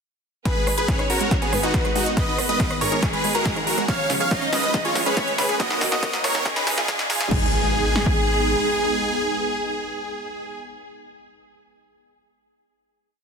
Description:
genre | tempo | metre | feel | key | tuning
uplifting trance | 140 BPM | 4/4 | straight | G# dorian | A4 = 439 Hz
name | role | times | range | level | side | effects
supersaw chords | melody | 0.5-10.6 s | B3 to E#5 | -24 LUFS | equal | sidechain pumping, digital delay
dark grand piano | second line | 0.5-10.6 s | F#5 to E#6 | -32 LUFS | right 1 dB | sidechain pumping, digital delay
dark symphonic violin section | second line | 0.5-10.6 s | G#3 to D#5 | -28 LUFS | equal | digital delay
supersaw pad | sustained chords | 0.5-10.6 s | D#3 to D#4 | -31 LUFS | right 2 dB | phaser, sidechain pumping
big-room dance drum kit | drums | 0.5-8.2 s | kick drum, snare drum | -24 LUFS | equal | overdrive
big-room dance drum kit | drums | 0.5-7.4 s | crash cymbal, hi-hat, rim click, snare drum | -27 LUFS | right 1 dB | overdrive, high-pass filter on snare, sidechain pumping on hats, high-pass filter on hats, sidechain pumping on cymbals, high-pass filter on cymbals, high-pass filter on room
riser and impact | sound effects | 3.6-10.6 s | none | -34 LUFS | equal | none
analog pluck | arpeggios | 0.6-7.5 s | D#2 to G#4 | -32 LUFS | right 2 dB | chorus, cassette tape, sidechain pumping, digital delay
tight sequencer bass | bass | 0.7-8.6 s | G#1 to D#2 | -32 LUFS | equal | none
room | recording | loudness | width
light reverb | dense, heavily limited modern master, high-pass filter | -19 LUFS | side -6 dB against mid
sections
0.5-7.3 build; 7.3-10.7 final chord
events
build-up 0.5-7.3; drum fill 0.5-7.3; filter sweep on synth pluck 0.5-7.3; filter sweep 0.5-7.3; riser 3.6-7.3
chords
0.5 G#m; 3.9 C#; 5.6 D#m; 7.3 G#m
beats
| 0.46 0.88 1.31 1.74 | 2.17 2.60 3.03 3.46 | 3.88 4.31 4.74 5.17 | 5.60 6.03 6.46 6.88 | 7.31 7.74 8.17 8.60 | 9.03 9.46 9.88 10.31

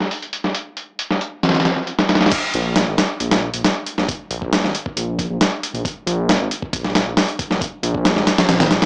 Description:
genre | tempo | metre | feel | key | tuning
breakbeat, breaks | 136 BPM | 4/4 | straight | unclear | A4 = 441 Hz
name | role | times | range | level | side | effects
dusty soul sampler-style drum kit | drums | 0.0-8.9 s | crash cymbal, hi-hat, kick drum, snare drum | -20 LUFS | equal | overdrive, low-pass filter on hats, low-pass filter on snare, low-pass filter on cymbals, low-pass filter on kick, low-pass filter on room
dark detuned saw bass | bass | 2.5-8.9 s | Ab1 to Bb1 | -26 LUFS | equal | none
room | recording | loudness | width
light reverb | small speaker sound | -19 LUFS | mono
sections
0.0-2.3 A section; 2.3-8.9 B section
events
drop 2.3-8.9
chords
none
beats
0.11 | 0.55 0.99 1.43 1.88 | 2.32 2.76 3.20 3.64 | 4.08 4.52 4.96 5.41 | 5.85 6.29 6.73 7.17 | 7.61 8.05 8.49

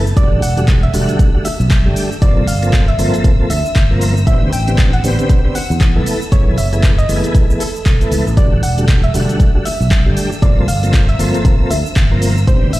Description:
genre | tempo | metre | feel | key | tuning
deep house | 117 BPM | 4/4 | swing 58% on 16ths | unclear | A4 = 440 Hz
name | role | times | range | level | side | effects
soft round pluck | melody | 0.0-12.8 s | A4 to G5 | -24 LUFS | right 2 dB | wide subtle chorus, tape echo
tonewheel organ | stabs | 0.0-12.7 s | D3 to Bb4 | -20 LUFS | equal | chorus vibrato, fast rotary speaker, sidechain pumping, tape echo
fingered electric bass | bass | 0.0-12.8 s | E1 to E2 | -16 LUFS | equal | sidechain pumping
rich symphonic violin section | texture | 0.0-12.8 s | E6 to A6 | -32 LUFS | left 1 dB | sidechain pumping
deep house drum kit | drums | 0.1-12.8 s | handclaps, hi-hat, shaker | -24 LUFS | equal | small room ambience
electronic kick drum | drums | 0.2-12.6 s | none | -12 LUFS | equal | small room ambience
room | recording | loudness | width
little or no reverb | played on a big sound system in a bare room, large studio reverb | -11 LUFS | side -17 dB against mid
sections
0.0-12.8 A section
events
none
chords
0.2 Em11; 2.2 Gm11; 4.3 Am11; 6.1 F#m11; 8.4 Em11; 10.4 Gm11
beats
| 0.17 0.68 1.19 1.71 | 2.22 2.73 3.24 3.76 | 4.27 4.78 5.29 5.81 | 6.32 6.83 7.35 7.86 | 8.37 8.88 9.40 9.91 | 10.42 10.94 11.45 11.96 | 12.47

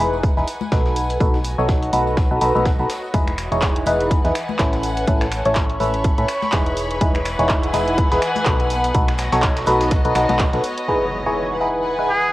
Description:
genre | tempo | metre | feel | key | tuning
piano house | 124 BPM | 4/4 | swing 57% on 16ths | E major | A4 = 440 Hz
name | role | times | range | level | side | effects
barking FM electric piano | riff | 0.0-12.1 s | C#4 to C#5 | -20 LUFS | equal | phaser, vintage 12-bit sampler grit, sidechain pumping, low-pass filter, cassette tape, tape echo
solid FM bass | bass | 0.0-10.6 s | E1 to A2 | -24 LUFS | equal | sidechain pumping
clear studio string section | texture | 0.0-12.3 s | E3 to C#6 | -26 LUFS | equal | sidechain pumping, cassette tape
tambourine and congas | percussion | 0.1-10.9 s | none | -33 LUFS | left 8 dB | none
breakbeat sampler-style drum kit | drums | 0.2-10.8 s | hi-hat, snare drum, tambourine | -35 LUFS | equal | none
electronic kick drum | drums | 0.2-10.5 s | none | -19 LUFS | equal | overdrive, cassette tape
house drum kit | drums | 0.5-11.0 s | crash cymbal, finger snaps, handclaps, hi-hat | -27 LUFS | equal | overdrive, low-pass filter on hats, cassette tape, low-pass filter on snare, low-pass filter on cymbals, low-pass filter on room
string machine, violins | sustained chords | 10.9-12.3 s | B4 to G#5 | -28 LUFS | equal | ensemble chorus, sidechain pumping, cassette tape
impact | sound effects | 10.9-12.3 s | none | -32 LUFS | equal | none
trumpet with straight mute | melody | 12.1-12.3 s | G#4 | -16 LUFS | equal | none
room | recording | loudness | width
wet spring reverb, RT60 1.4 s, digital ambience | home recording on cassette | -16 LUFS | side -17 dB against mid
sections
0.0-10.9 A section; 10.9-12.3 B section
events
fade-in on string section 0.0-10.9; impact 10.9-12.3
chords
0.0 Emaj7; 1.0 B7; 3.1 Emaj7; 8.7 B7; 10.9 Emaj7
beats
0.24 0.72 | 1.21 1.69 2.17 2.66 | 3.14 3.62 4.11 4.59 | 5.08 5.56 6.04 6.53 | 7.01 7.50 7.98 8.46 | 8.95 9.43 9.91 10.40 | 10.88 11.37 11.85

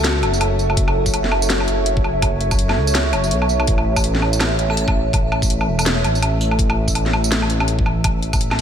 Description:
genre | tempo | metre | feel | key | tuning
half-time drum and bass | 165 BPM | 4/4 | swing 59% on 16ths, half-time | unclear | A4 = 440 Hz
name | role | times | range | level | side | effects
airy dreamy lead | melody | 0.0-0.1, 4.7-4.8 s | F#4 to A4 | -32 LUFS | left 2 dB | chorus, diffuse ambient delay
deep dark ambient pad | sustained chords | 0.0-8.6 s | A3 to E5 | -24 LUFS | equal | chorus, built-in reverb, sidechain pumping
dark detuned saw bass | bass | 0.0-8.6 s | E1 to C#2 | -20 LUFS | equal | none
drum and bass drum kit | drums | 0.0-8.6 s | hi-hat, snare drum, tambourine, woodblock | -21 LUFS | equal | none
pulsing gated texture | texture | 0.0-8.6 s | E5 | -26 LUFS | right 3 dB | chorus, built-in reverb
electronic kick drum | drums | 0.8-8.4 s | none | -20 LUFS | equal | none
room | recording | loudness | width
light reverb | none | -16 LUFS | side -8 dB against mid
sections
0.0-8.6 A section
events
none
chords
0.0 F#m; 3.7 A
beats
0.04 0.41 | 0.77 1.14 1.50 1.86 | 2.23 2.59 2.95 3.32 | 3.68 4.04 4.41 4.77 | 5.13 5.50 5.86 6.23 | 6.59 6.95 7.32 7.68 | 8.04 8.41

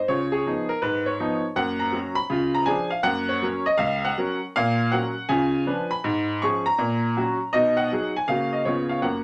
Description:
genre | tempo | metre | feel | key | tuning
jazz, stride piano | 161 BPM | 4/4 | swing 66% on 8ths | F# major | A4 = 440 Hz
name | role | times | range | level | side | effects
bright upright piano | solo | 0.0-9.2 s | C#2 to C#6 | -24 LUFS | equal | none
room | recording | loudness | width
wet studio reverb, RT60 0.6 s | none | -24 LUFS | mono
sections
0.0-9.2 A section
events
none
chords
0.1 C#9; 1.6 F#; 2.3 C#; 3.1 F#; 4.6 F#/A#; 5.3 C#7b9; 6.0 C#7/G#; 6.8 F#/A#; 7.5 B6; 8.3 F#/C#; 8.6 C#7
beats
| 0.09 0.47 0.84 1.21 | 1.58 1.95 2.32 2.69 | 3.07 3.44 3.81 4.18 | 4.55 4.92 5.30 5.67 | 6.04 6.41 6.78 7.15 | 7.53 7.90 8.27 8.64 | 9.01

